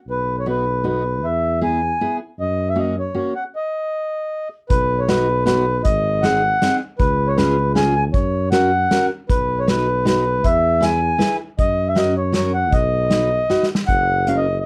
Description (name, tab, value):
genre	alpine folk, alpine dance band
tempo	156 BPM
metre	3/4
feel	straight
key	B major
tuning	A4 = 441 Hz
part	mellow accordion	melody	0.1-14.7 s	B4 to G#5	-22 LUFS	equal	none
part	mellow tuba	bass	0.1-14.6 s	F#1 to F#2	-25 LUFS	equal	none
part	fingerpicked steel-string acoustic guitar	accompaniment	0.5-14.5 s	A#3 to B4	-24 LUFS	equal	none
part	unplugged drum kit	drums	4.7-14.4 s	hi-hat, kick drum, snare drum	-24 LUFS	equal	none
room	light reverb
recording	worn, warbling old tape, cassette tape, warbly pitch drift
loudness	-19 LUFS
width	mono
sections	0.0-4.7 A section; 4.7-13.9 A section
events	stop 3.5-4.7; drum fill 13.5-13.9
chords	0.1 B; 1.2 E; 2.4 F#; 3.5 N.C.; 4.7 B; 5.9 G#7; 7.0 C#7; 8.1 F#; 9.3 B; 10.4 E; 11.6 F#; 12.7 B; 13.9 F#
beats	| 0.07 0.46 0.85 | 1.23 1.62 2.00 | 2.38 2.76 3.15 | 3.54 3.92 4.31 | 4.70 5.09 5.47 | 5.86 6.24 6.62 | 6.99 7.37 7.75 | 8.13 8.52 8.91 | 9.29 9.68 10.06 | 10.45 10.83 11.21 | 11.59 11.96 12.34 | 12.72 13.11 13.49 | 13.88 14.27 14.65